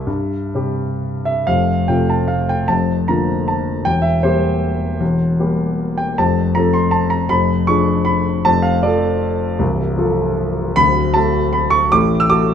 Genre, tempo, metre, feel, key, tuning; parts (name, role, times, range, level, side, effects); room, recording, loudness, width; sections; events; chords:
classical, piano waltz; 123-168 BPM; 3/4; rubato; F major; A4 = 445 Hz
warm grand piano; solo; 0.0-12.5 s; C1 to E6; -14 LUFS; equal
moderate large studio reverb, RT60 1.2 s; -14 LUFS; side -8 dB against mid
0.0-1.5 A section; 1.5-12.5 B section
0.0 C; 1.5 F; 2.7 Bb/F; 3.9 C7/E; 6.2 F; 7.3 Fdim7; 8.5 F; 10.8 D